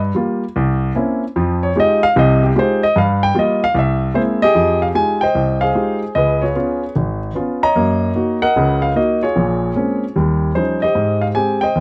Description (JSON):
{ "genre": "solo jazz", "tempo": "150 BPM", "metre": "4/4", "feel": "swing 65% on 8ths", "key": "F minor", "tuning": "A4 = 442 Hz", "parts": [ { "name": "warm grand piano", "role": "solo", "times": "0.0-11.8 s", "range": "Ab1 to Bb5", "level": "-16 LUFS", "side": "equal", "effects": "none" } ], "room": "little or no reverb", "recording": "close, detailed microphones", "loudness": "-16 LUFS", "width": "mono", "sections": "0.0-4.6 A section; 4.6-11.8 B section", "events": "grand piano solo 0.0-4.6", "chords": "0.0 Gm7; 0.6 C7b9; 1.4 Fm9; 3.0 Gm7; 3.8 C7b13; 4.6 Fm9; 6.2 Db7; 7.8 Gb6; 9.4 Bbm9; 10.2 Eb9; 11.0 Abmaj7" }